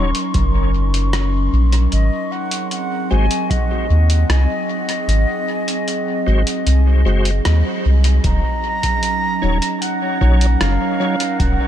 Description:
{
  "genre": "ambient dub",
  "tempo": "76 BPM",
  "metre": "4/4",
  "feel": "straight",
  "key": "Eb dorian",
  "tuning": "A4 = 443 Hz",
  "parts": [
    { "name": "warbly tape-like pad", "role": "sustained chords", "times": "0.0-11.7 s", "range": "Gb3 to Eb5", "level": "-23 LUFS", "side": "right 1 dB", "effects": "chorus, built-in reverb, vintage 12-bit sampler grit" },
    { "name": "bright tonewheel organ", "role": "stabs", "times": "0.0-11.2 s", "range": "Gb3 to Db5", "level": "-27 LUFS", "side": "left 2 dB", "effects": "chorus vibrato, fast rotary speaker, dub echo" },
    { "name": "soft dub sub bass", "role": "bass", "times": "0.0-11.6 s", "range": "Eb1 to Eb2", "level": "-14 LUFS", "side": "equal", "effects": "none" },
    { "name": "lo-fi sampler-style drum kit", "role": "drums", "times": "0.1-11.6 s", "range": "hi-hat, rim click", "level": "-26 LUFS", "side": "equal", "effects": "dub echo" },
    { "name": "electronic kick drum", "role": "drums", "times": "0.3-11.6 s", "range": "none", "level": "-20 LUFS", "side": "equal", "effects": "none" },
    { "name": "mellow silver concert flute", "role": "melody", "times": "1.9-11.7 s", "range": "Eb5 to Bb5", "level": "-23 LUFS", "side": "equal", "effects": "dub echo" }
  ],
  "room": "little or no reverb",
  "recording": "none",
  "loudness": "-15 LUFS",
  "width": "side -11 dB against mid",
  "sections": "0.0-8.2 A section; 8.2-11.7 B section",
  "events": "kick drops out 6.7-8.2; band accent 7.5-7.8",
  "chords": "0.0 Ebm7; 1.9 Ab7; 8.2 Ebm7",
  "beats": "0.34 1.13 | 1.92 2.71 3.50 4.29 | 5.08 5.87 6.66 7.45 | 8.24 9.03 9.82 10.61 | 11.40"
}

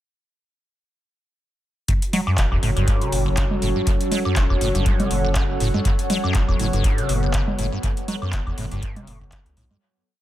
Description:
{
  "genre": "acid house",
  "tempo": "121 BPM",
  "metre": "4/4",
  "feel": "swing 56% on 16ths",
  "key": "F# phrygian",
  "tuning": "A4 = 440 Hz",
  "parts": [
    { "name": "warbly tape-like pad", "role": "sustained chords", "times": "2.3-9.8 s", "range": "F#3 to A4", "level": "-30 LUFS", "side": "left 1 dB", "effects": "chorus, built-in reverb, sidechain pumping" },
    { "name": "liquid acid bass", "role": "riff", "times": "1.9-9.8 s", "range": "F#1 to F#3", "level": "-25 LUFS", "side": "equal", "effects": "phaser, overdrive, analog chorus, cassette tape, sidechain pumping, dub echo" },
    { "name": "saturated sub bass", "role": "bass", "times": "1.9-9.7 s", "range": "E1 to C#2", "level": "-25 LUFS", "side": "equal", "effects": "sidechain pumping" },
    { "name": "booming analog drum machine", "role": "drums", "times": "1.9-9.8 s", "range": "congas, handclaps, hi-hat, woodblock", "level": "-28 LUFS", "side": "right 2 dB", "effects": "dub echo" },
    { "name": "electronic kick drum", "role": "drums", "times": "1.9-9.4 s", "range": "none", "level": "-22 LUFS", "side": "equal", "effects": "none" },
    { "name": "warbly tape-like pad", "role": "texture", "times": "2.2-9.8 s", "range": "F#4 to F#5", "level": "-29 LUFS", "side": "equal", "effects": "chorus, built-in reverb, phaser, sidechain pumping" }
  ],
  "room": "light reverb, digital ambience",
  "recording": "echo-heavy mix",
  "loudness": "-19 LUFS",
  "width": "side -13 dB against mid",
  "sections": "1.9-9.8 drop",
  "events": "drop 1.9-9.8; fade-out 7.2-9.8",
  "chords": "1.9 F#m",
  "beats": "| 1.88 2.38 2.88 3.37 | 3.87 4.36 4.86 5.36 | 5.85 6.35 6.84 7.34 | 7.83 8.33 8.83 9.32"
}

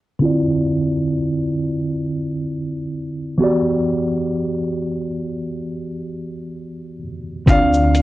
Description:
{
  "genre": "lo-fi hip hop",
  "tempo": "free time",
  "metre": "none",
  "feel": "none",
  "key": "D dorian",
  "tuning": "A4 = 440 Hz",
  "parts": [
    { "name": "mellow tine electric piano", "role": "accompaniment", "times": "0.2-8.0 s", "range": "D3 to D5", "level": "-19 LUFS", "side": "equal", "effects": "medium stereo tremolo, cassette tape, low-pass filter" },
    { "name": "felt-muted upright piano", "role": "melody", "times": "7.5-8.0 s", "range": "F5", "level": "-18 LUFS", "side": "left 1 dB", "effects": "low-pass filter" },
    { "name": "upright bass", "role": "bass", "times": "7.5-8.0 s", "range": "D2", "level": "-17 LUFS", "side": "equal", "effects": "none" },
    { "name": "lo-fi sampler-style drum kit", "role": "drums", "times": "7.5-8.0 s", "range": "hi-hat, kick drum, shaker", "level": "-16 LUFS", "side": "equal", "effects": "vintage 12-bit sampler grit" }
  ],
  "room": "moderate studio reverb, RT60 0.5 s",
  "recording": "worn, warbling old tape, cassette tape, warbly pitch drift",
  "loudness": "-18 LUFS",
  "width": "side -16 dB against mid",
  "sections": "0.2-7.5 A section",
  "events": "filter sweep on tine electric piano 0.2-7.5",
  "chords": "0.2 Dm9; 3.4 Em9; 7.5 Dm7",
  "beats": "free time"
}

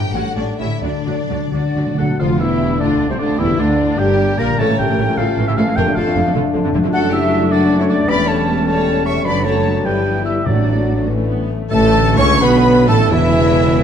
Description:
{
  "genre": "classical, dramatic, fast romantic movement for symphony orchestra",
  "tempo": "85-105 BPM (dotted quarters)",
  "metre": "6/8",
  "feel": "rubato",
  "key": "D minor, D major from 6.9 s",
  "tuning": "A4 = 440 Hz",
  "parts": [
    { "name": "warm symphonic violin section", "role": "melody", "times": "0.0-13.8 s", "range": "A3 to C#6", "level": "-26 LUFS", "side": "left 3 dB", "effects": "none" },
    { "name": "rich symphonic violin section", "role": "second line", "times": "0.0-13.8 s", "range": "D4 to E5", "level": "-26 LUFS", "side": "left 2 dB", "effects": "none" },
    { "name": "concert harp", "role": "arpeggios", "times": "0.0-13.8 s", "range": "E2 to Bb5", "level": "-23 LUFS", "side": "left 11 dB", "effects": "none" },
    { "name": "rich symphonic viola section", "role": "accompaniment", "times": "0.1-13.8 s", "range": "C#3 to Bb4", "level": "-25 LUFS", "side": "right 1 dB", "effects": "none" },
    { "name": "rich symphonic cello section", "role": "bass", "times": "0.1-13.8 s", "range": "C2 to D3", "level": "-21 LUFS", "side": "right 2 dB", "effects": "none" },
    { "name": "rich symphonic double bass section", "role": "bass", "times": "0.1-13.8 s", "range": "E1 to D2", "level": "-22 LUFS", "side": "right 4 dB", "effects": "none" },
    { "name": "timpani", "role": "percussion", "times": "0.8-2.8, 10.5-11.0 s", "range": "A2 to D3", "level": "-24 LUFS", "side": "right 2 dB", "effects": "none" },
    { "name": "silver concert flute", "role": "second line", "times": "1.5-13.8 s", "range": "C5 to C#6", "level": "-25 LUFS", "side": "left 1 dB", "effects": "none" },
    { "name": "warm oboe", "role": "second line", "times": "1.5-13.8 s", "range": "E4 to C#6", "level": "-24 LUFS", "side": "right 2 dB", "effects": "none" },
    { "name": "mellow French horn section", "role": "sustained chords", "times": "1.5-13.8 s", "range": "E3 to C#5", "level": "-21 LUFS", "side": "left 4 dB", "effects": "none" },
    { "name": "warm clarinet", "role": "second line", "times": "2.2-13.8 s", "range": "C4 to C#5", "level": "-24 LUFS", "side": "left 1 dB", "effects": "none" },
    { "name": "warm bassoon", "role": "accompaniment", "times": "2.2-13.8 s", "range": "C3 to C#4", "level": "-24 LUFS", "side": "right 1 dB", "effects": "none" },
    { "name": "warm trombone section", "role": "sustained chords", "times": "11.7-13.8 s", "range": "E2 to C#3", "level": "-25 LUFS", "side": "right 4 dB", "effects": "none" },
    { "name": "mellow trumpet", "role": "stabs", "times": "11.7-13.8 s", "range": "E4 to C#5", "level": "-21 LUFS", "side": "right 3 dB", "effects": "none" },
    { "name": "clear tuba", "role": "bass", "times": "11.7-13.8 s", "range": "E1 to C#2", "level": "-21 LUFS", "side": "right 4 dB", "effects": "none" }
  ],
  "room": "wet recital hall reverb, RT60 1.8 s",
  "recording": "dark, warm production",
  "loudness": "-13 LUFS",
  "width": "side -8 dB against mid",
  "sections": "0.0-2.2 A section; 2.2-11.7 B section; 11.7-13.8 C section",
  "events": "timpani fill 0.8-2.2",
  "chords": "0.1 A7; 0.8 D; 2.2 Dm; 3.4 Gm7; 4.6 A; 5.8 Dm/F; 6.9 D/F#; 8.1 A7/E; 9.3 D/F#; 9.9 Em/G; 10.5 D/A; 11.1 A; 11.7 D/A; 13.1 A/E",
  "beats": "0.14 | 0.83 1.52 | 2.20 2.81 | 3.40 3.99 | 4.59 5.18 | 5.77 6.35 | 6.93 7.51 | 8.09 8.67 | 9.26 9.85 | 10.46 11.08 | 11.71 12.42 | 13.12 13.81"
}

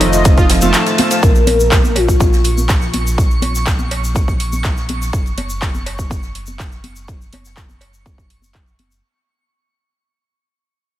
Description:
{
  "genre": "progressive house",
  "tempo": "123 BPM",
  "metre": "4/4",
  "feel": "straight",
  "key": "Bb minor",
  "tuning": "A4 = 440 Hz",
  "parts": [
    { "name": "lush unison pad", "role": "sustained chords", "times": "0.0-1.2 s", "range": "Eb3 to F4", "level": "-24 LUFS", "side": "right 1 dB", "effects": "chorus, sidechain pumping" },
    { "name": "analog pluck", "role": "arpeggios", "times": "0.0-1.2 s", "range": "F3 to F4", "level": "-20 LUFS", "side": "right 3 dB", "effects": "chorus, sidechain pumping, digital delay" },
    { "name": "chorused polysynth", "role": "stabs", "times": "0.0-1.2 s", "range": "A3 to A5", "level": "-18 LUFS", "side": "left 2 dB", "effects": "sidechain pumping, digital delay" },
    { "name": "saturated sub bass", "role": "bass", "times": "0.0-9.0 s", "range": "F1 to Bb1", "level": "-20 LUFS", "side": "equal", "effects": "tube saturation, sidechain pumping" },
    { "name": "house drum kit", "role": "drums", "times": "0.0-8.9 s", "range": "handclaps, hi-hat", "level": "-21 LUFS", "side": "right 1 dB", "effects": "overdrive" },
    { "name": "swinging big-band drum kit", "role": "drums", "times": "0.0-8.9 s", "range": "ride cymbal, snare drum", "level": "-29 LUFS", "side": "left 1 dB", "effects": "sidechain pumping on cymbals, high-pass filter on cymbals, high-pass filter on snare, high-pass filter on room" },
    { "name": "cowbell and congas", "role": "percussion", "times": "0.0-8.9 s", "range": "none", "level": "-24 LUFS", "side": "left 2 dB", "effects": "sidechain pumping on perc" },
    { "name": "tube shaker", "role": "percussion", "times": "0.1-9.0 s", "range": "none", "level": "-27 LUFS", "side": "left 3 dB", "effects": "none" },
    { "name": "electronic kick drum", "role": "drums", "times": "0.3-8.6 s", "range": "none", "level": "-15 LUFS", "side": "equal", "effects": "none" },
    { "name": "soft octave-layered synth lead", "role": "melody", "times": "1.2-2.6 s", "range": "F4 to Bb4", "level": "-19 LUFS", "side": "left 3 dB", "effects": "chorus, phaser, sidechain pumping, tape echo" },
    { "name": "twinkling granular texture", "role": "texture", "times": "1.9-9.0 s", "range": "Db6", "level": "-30 LUFS", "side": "right 2 dB", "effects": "built-in reverb, sidechain pumping" }
  ],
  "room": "light reverb, small room ambience",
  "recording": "none",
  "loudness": "-12 LUFS",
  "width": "side -13 dB against mid",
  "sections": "0.0-1.2 A section; 1.2-9.0 B section",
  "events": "drop 0.0-1.2; break 0.7-1.2; fade-out 1.2-9.0",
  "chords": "0.0 F7; 1.2 Bbm; 5.1 Gb5",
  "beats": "0.25 0.74 | 1.23 1.72 2.21 2.69 | 3.18 3.67 4.16 4.64 | 5.13 5.62 6.11 6.59 | 7.08 7.57 8.06 8.55"
}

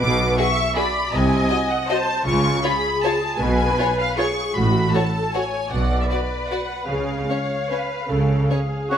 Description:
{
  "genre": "classical, orchestral ballroom waltz",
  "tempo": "143-172 BPM",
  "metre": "3/4",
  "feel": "rubato",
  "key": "unclear",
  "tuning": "A4 = 441 Hz",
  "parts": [
    { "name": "warm symphonic violin section", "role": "melody", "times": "0.0-9.0 s", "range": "D5 to D6", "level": "-25 LUFS", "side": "left 2 dB", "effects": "none" },
    { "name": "rich symphonic viola section", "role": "accompaniment", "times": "0.0-9.0 s", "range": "E#4 to E5", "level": "-25 LUFS", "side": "equal", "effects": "none" },
    { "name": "clear symphonic cello section", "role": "bass", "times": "0.0-8.4 s", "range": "A2 to C#3", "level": "-25 LUFS", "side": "right 1 dB", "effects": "none" },
    { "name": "clear symphonic double bass section", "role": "bass", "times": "0.0-8.4 s", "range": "A1 to C#2", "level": "-24 LUFS", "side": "right 1 dB", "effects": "none" },
    { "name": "rich symphonic violin section", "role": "second line", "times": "0.4-9.0 s", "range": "C#4 to Eb5", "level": "-27 LUFS", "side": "left 2 dB", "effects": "none" },
    { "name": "warm oboe", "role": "second line", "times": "8.9-9.0 s", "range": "F#4", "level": "-20 LUFS", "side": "right 2 dB", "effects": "none" }
  ],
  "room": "moderate recital hall reverb, RT60 1.6 s",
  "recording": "none",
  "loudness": "-18 LUFS",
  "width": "side -8 dB against mid",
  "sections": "0.0-9.0 A section",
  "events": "none",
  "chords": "0.0 G#dim/B (rootless); 1.1 Cdim7; 2.3 C#; 3.4 C#7/B; 4.6 F#m/A; 5.7 Bm; 6.9 C#",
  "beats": "| 0.00 0.37 0.76 | 1.13 1.50 1.89 | 2.25 2.63 3.03 | 3.40 3.78 4.18 | 4.55 4.93 5.33 | 5.71 6.09 6.50 | 6.89 7.29 7.70 | 8.10 8.50 8.91"
}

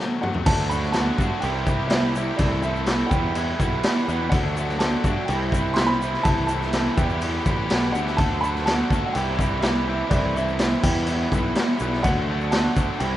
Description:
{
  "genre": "indie rock",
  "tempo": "124 BPM",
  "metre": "4/4",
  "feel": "straight",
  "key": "unclear",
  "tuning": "A4 = 440 Hz",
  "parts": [
    { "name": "dark upright piano", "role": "melody", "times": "0.0-13.2 s", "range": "D5 to C6", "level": "-29 LUFS", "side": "right 1 dB", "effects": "slapback echo" },
    { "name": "cranked stack guitar", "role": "riff", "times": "0.0-13.2 s", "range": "E3 to A4", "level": "-29 LUFS", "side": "left 7 dB", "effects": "overdrive" },
    { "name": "raw garage guitar", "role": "riff", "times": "0.0-13.2 s", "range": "E2 to F#4", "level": "-27 LUFS", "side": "right 5 dB", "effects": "overdrive, wide subtle chorus" },
    { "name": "raw garage drum kit", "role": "drums", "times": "0.2-13.1 s", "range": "crash cymbal, kick drum, snare drum, toms", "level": "-24 LUFS", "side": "equal", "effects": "none" },
    { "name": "picked electric bass", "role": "bass", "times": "0.5-13.2 s", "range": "A1 to G2", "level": "-27 LUFS", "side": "equal", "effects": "none" },
    { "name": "tube shaker", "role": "percussion", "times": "0.5-13.1 s", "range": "none", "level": "-48 LUFS", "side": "left 5 dB", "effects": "none" }
  ],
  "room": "light reverb, studio reverb",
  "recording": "rough home demo mix, nothing above 10.6 kHz",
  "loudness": "-20 LUFS",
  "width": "side -13 dB against mid",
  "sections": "0.5-13.2 A section",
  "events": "break 0.0-0.5; drum fill 0.0-0.5",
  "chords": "0.5 D; 1.4 C; 2.4 Am/C; 3.1 Em; 4.3 D; 5.3 C; 6.3 Am/C; 7.0 Em; 8.2 D; 9.1 C; 10.1 Am/C; 10.8 Em; 12.0 D",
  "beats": "| 0.47 0.95 1.43 1.92 | 2.40 2.88 3.36 3.84 | 4.33 4.81 5.29 5.77 | 6.25 6.74 7.22 7.70 | 8.18 8.66 9.15 9.63 | 10.11 10.60 11.08 11.56 | 12.04 12.53 13.01"
}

